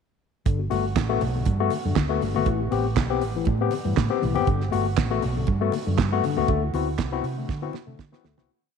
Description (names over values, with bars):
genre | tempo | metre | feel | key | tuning
disco | 120 BPM | 4/4 | straight | G major | A4 = 440 Hz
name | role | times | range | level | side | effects
barky tine electric piano | accompaniment | 0.5-8.5 s | G2 to G4 | -25 LUFS | left 9 dB | overdrive
hollow-body short-scale fingered electric bass | bass | 0.5-8.5 s | F#1 to D3 | -27 LUFS | right 2 dB | none
damped 70s drum kit | drums | 0.5-8.5 s | handclaps, hi-hat, kick drum, snare drum | -26 LUFS | right 5 dB | none
congas | percussion | 0.5-8.5 s | none | -35 LUFS | left 7 dB | none
room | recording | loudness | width
moderate echo chamber reverb, RT60 2.2 s | 1960s-style stereo | -22 LUFS | side -6 dB against mid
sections
0.5-8.5 verse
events
fade-out 6.5-8.5; drum fill 7.5-8.5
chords
0.5 Gmaj9; 2.5 Am7; 4.5 Gmaj9; 6.5 D13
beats
| 0.46 0.96 1.47 1.97 | 2.47 2.97 3.47 3.97 | 4.47 4.98 5.48 5.98 | 6.48 6.98 7.48 7.99